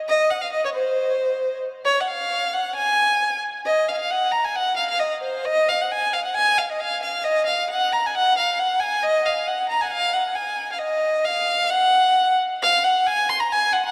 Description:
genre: balkan folk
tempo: 134 BPM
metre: 2/4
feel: swing 54% on 16ths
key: Ab mixolydian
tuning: A4 = 440 Hz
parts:
  - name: rich violin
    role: solo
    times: 0.1-13.9 s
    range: C5 to C6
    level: -21 LUFS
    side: equal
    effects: diffuse ambient delay
room: wet church reverb, RT60 3.7 s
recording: dreamy mix soaked in reverb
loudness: -21 LUFS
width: mono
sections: 0.0-3.6 A section; 3.6-10.8 B section; 10.8-13.9 B section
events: none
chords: none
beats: | 0.05 0.50 | 0.95 1.40 | 1.84 2.29 | 2.74 3.19 | 3.64 4.08 | 4.53 4.98 | 5.43 5.88 | 6.33 6.78 | 7.22 7.67 | 8.12 8.57 | 9.02 9.47 | 9.92 10.37 | 10.81 11.26 | 11.71 12.16 | 12.61 13.05 | 13.50

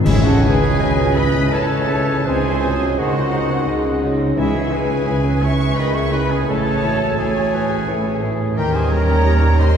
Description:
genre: classical, slow romantic movement for symphony orchestra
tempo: 85 BPM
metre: 3/4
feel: uneven beats, rubato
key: C# minor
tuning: A4 = 439 Hz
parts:
  - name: warm studio violin section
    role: melody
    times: 0.0-9.8 s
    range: E5 to C#6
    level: -27 LUFS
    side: left 3 dB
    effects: none
  - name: concert harp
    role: arpeggios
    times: 0.0-9.8 s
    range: A2 to G#4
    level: -26 LUFS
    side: left 3 dB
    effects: none
  - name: clear clarinet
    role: second line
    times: 0.1-9.8 s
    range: G#4 to D#5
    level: -31 LUFS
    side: left 1 dB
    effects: none
  - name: rich studio violin section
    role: second line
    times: 0.1-9.8 s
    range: G#4 to E5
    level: -30 LUFS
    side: left 2 dB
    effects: none
  - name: silver concert flute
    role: second line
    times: 0.1-9.8 s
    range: G#4 to E5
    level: -28 LUFS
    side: left 1 dB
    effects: none
  - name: mellow bassoon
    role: accompaniment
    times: 0.1-9.8 s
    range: C#3 to G#3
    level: -25 LUFS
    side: right 1 dB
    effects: none
  - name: warm studio viola section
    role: accompaniment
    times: 0.1-9.8 s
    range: G#3 to G#4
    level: -27 LUFS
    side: right 2 dB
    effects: none
  - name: dark French horn section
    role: sustained chords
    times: 0.1-9.8 s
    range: E3 to C#4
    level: -32 LUFS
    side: left 2 dB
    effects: none
  - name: mellow trumpet section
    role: stabs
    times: 0.1-9.8 s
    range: E4 to C#5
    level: -26 LUFS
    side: right 2 dB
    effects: none
  - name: warm studio cello section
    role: bass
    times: 0.1-9.8 s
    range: D#2 to C#3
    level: -23 LUFS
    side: right 1 dB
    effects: none
  - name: warm studio double bass section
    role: bass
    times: 0.1-9.8 s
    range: A1 to D#2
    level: -21 LUFS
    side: right 2 dB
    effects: none
  - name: clash cymbals and concert bass drum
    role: percussion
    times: 0.1-1.5 s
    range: none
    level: -25 LUFS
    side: equal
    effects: none
  - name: timpani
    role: percussion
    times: 0.1-5.4 s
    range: C#3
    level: -24 LUFS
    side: left 1 dB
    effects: none
room: wet cathedral reverb, RT60 4.9 s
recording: heard from further back in the room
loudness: -15 LUFS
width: side -8 dB against mid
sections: 0.1-9.8 A section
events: band accent 0.1-0.8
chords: 0.1 C#m; 2.3 G#7/C#; 4.4 C#m; 6.5 Amaj7; 8.6 D#7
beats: | 0.06 0.80 1.52 | 2.26 2.99 3.68 | 4.38 5.08 5.78 | 6.49 7.19 7.88 | 8.57 9.26

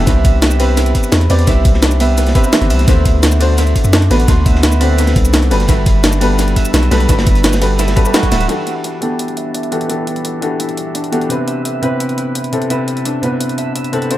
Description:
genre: liquid drum and bass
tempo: 171 BPM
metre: 4/4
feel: straight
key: unclear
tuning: A4 = 439 Hz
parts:
  - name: clear grand piano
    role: accompaniment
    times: 0.0-14.2 s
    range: C3 to C6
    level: -18 LUFS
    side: left 1 dB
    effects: low-pass filter, dub echo
  - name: Celtic harp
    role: arpeggios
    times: 0.0-14.2 s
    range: E3 to E5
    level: -21 LUFS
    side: right 2 dB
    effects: low-pass filter, tape echo
  - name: long sustained 808-style bass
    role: bass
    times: 0.0-8.5 s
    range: D1 to F#2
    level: -13 LUFS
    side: equal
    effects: none
  - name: crunchy breakbeat drum kit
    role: drums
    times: 0.1-8.5 s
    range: hi-hat, snare drum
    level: -23 LUFS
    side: equal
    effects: high-pass filter on hats, small room ambience, high-pass filter on snare, high-pass filter on room, analog delay
  - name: electronic kick drum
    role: drums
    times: 0.1-8.3 s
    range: none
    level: -13 LUFS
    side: equal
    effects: small room ambience
  - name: jungle sampler-style drum kit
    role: drums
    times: 0.1-14.2 s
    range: hi-hat, ride cymbal, shaker, snare drum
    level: -19 LUFS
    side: equal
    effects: small room ambience, analog delay
room: light reverb, small room ambience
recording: echo-heavy mix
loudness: -11 LUFS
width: side -14 dB against mid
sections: 0.0-8.5 A section; 8.5-14.2 B section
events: drop 0.0-8.5; band accent 8.1; filter sweep on harp 8.5-14.2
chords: 0.1 Cmaj7; 2.9 D7; 5.5 Gmaj9; 8.5 Em11; 11.3 Cmaj7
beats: | 0.07 0.42 0.77 1.12 | 1.48 1.83 2.18 2.53 | 2.88 3.23 3.58 3.93 | 4.28 4.63 4.98 5.33 | 5.68 6.04 6.39 6.74 | 7.09 7.44 7.79 8.14 | 8.49 8.84 9.19 9.54 | 9.90 10.25 10.60 10.95 | 11.30 11.65 12.00 12.35 | 12.70 13.05 13.40 13.76 | 14.11

